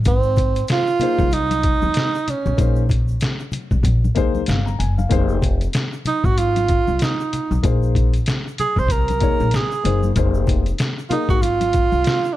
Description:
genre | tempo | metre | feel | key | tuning
hip hop, jazz-hop | 95 BPM | 4/4 | swing 59% on 16ths | unclear | A4 = 440 Hz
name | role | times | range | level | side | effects
tube shaker and congas | percussion | 0.0-12.4 s | none | -30 LUFS | left 4 dB | none
breathy tenor saxophone | melody | 0.1-12.4 s | C4 to C5 | -20 LUFS | right 4 dB | none
upright bass | bass | 0.1-12.0 s | F1 to Eb2 | -20 LUFS | equal | none
trip hop sampler-style drum kit | drums | 0.1-12.2 s | hi-hat, kick drum, snare drum | -20 LUFS | equal | none
dark concert grand piano | accompaniment | 1.0-11.4 s | Bb3 to Bb5 | -25 LUFS | left 8 dB | none
room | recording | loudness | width
small room ambience | dark, warm production | -16 LUFS | side -15 dB against mid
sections
0.0-12.4 A section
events
none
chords
0.1 Abadd9; 2.6 Bb7(no3); 5.1 Fm7; 7.6 Bb9sus4; 10.2 Fm7

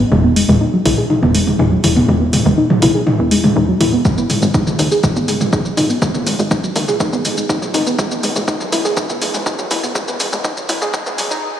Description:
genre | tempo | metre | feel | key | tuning
melodic techno | 122 BPM | 4/4 | straight | unclear | A4 = 440 Hz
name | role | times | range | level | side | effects
soft round pluck | arpeggios | 0.0-11.4 s | F#3 to G#4 | -16 LUFS | equal | chorus, sidechain pumping, dub echo
tight sequencer bass | bass | 0.0-11.4 s | E1 to D#2 | -20 LUFS | equal | sidechain pumping
punchy analog drum machine | drums | 0.1-11.4 s | hi-hat, shaker, toms | -18 LUFS | left 1 dB | none
electronic kick drum | drums | 4.1-11.0 s | none | -18 LUFS | equal | none
room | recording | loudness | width
moderate huge ambient reverb, RT60 4.6 s | played on a big sound system in a bare room, stone room reverb, high-pass filter | -13 LUFS | side -10 dB against mid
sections
0.0-11.6 A section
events
build-up 0.0-11.6; drum fill 0.0-11.4; filter sweep on synth arpeggio sound 0.0-11.6; filter sweep 0.0-11.6; stop 11.4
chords
0.1 E; 4.1 G#m; 8.0 E

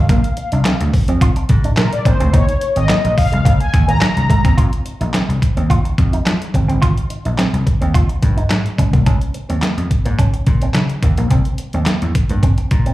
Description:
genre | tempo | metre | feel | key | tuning
early-eighties boogie funk | 107 BPM | 4/4 | straight | F minor | A4 = 440 Hz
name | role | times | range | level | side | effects
mellow synth brass | accompaniment | 0.0-4.5 s | Bb4 to Bb5 | -20 LUFS | left 2 dB | chorus, slapback echo
electric guitar with an envelope filter | riff | 0.0-12.9 s | Ab3 to F4 | -25 LUFS | right 2 dB | lush chorus, slapback echo
vintage slap bass | bass | 0.0-12.9 s | G1 to F3 | -17 LUFS | equal | none
detuned 8-bit digital drum machine | drums | 0.1-12.9 s | handclaps, hi-hat, kick drum, snare drum | -15 LUFS | equal | overdrive
room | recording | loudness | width
little or no reverb | live gig heard through the venue's PA, club reverb | -13 LUFS | side -16 dB against mid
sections
0.0-4.6 A section; 4.6-12.9 B section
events
analog polysynth solo 0.0-4.6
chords
0.1 Bb; 2.3 Eb7sus4; 4.6 F5; 6.5 Abmaj7; 8.8 Db5; 11.3 C7(no3)

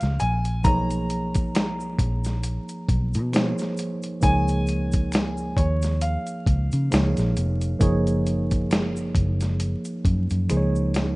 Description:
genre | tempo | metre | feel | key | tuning
R&B, neo-soul | 67 BPM | 4/4 | swing 56% on 16ths | Db major | A4 = 438 Hz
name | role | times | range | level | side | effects
warm concert grand piano | melody | 0.0-10.5 s | Db5 to Bb5 | -30 LUFS | equal | none
mellow tine electric piano | accompaniment | 0.0-11.2 s | F3 to Db5 | -27 LUFS | right 1 dB | analog chorus
vintage muted fingered electric bass | bass | 0.0-11.2 s | F1 to Db3 | -24 LUFS | equal | none
dusty soul sampler-style drum kit | drums | 0.0-11.2 s | hi-hat, kick drum, snare drum | -24 LUFS | equal | none
tube shaker and finger snaps | percussion | 0.0-11.2 s | none | -43 LUFS | equal | none
room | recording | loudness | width
light reverb, small room reverb | rough home demo mix, vinyl crackle, nothing above 11.0 kHz | -21 LUFS | side -23 dB against mid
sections
0.0-11.2 A section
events
drum fill 10.5-11.2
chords
0.0 Db; 0.6 Cbmaj9#11; 4.2 Db; 6.9 Db69; 7.8 Gb69; 10.5 Dbadd9

